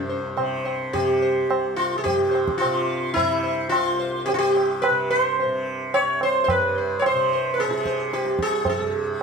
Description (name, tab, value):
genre	indian classical, Hindustani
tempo	108 BPM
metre	4/4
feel	straight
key	unclear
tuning	A4 = 439 Hz
part	sitar	melody	0.0-9.2 s	Db4 to Db5	-21 LUFS	equal	plate reverb
part	tanpura	drone	0.0-9.2 s	C2 to C3	-30 LUFS	equal	none
part	tabla	percussion	0.4-8.9 s	none	-29 LUFS	right 4 dB	none
room	moderate studio reverb, RT60 0.6 s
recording	none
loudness	-20 LUFS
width	side -5 dB against mid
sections	0.0-9.2 A section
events	speeding up 0.0-9.2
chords	none